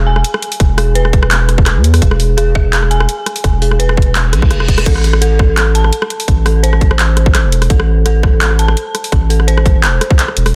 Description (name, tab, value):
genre	half-time drum and bass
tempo	169 BPM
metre	4/4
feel	half-time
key	A harmonic minor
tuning	A4 = 441 Hz
part	dark detuned synth bell	arpeggios	0.0-10.6 s	G#4 to A5	-22 LUFS	equal	chorus, digital delay
part	saturated sub bass	bass	0.0-10.5 s	E1 to E2	-14 LUFS	equal	none
part	drum and bass drum kit	drums	0.2-10.5 s	crash cymbal, handclaps, hi-hat, rim click	-19 LUFS	equal	overdrive, studio reverb
part	electronic kick drum	drums	0.6-10.2 s	none	-14 LUFS	equal	overdrive, studio reverb
part	reverse cymbal	sound effects	4.3-4.9 s	none	-26 LUFS	equal	none
room	little or no reverb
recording	dense, heavily limited modern master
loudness	-12 LUFS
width	mono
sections	0.0-10.6 A section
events	reverse cymbal 4.3-4.9; drum fill 4.3-4.9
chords	0.0 E; 4.9 Am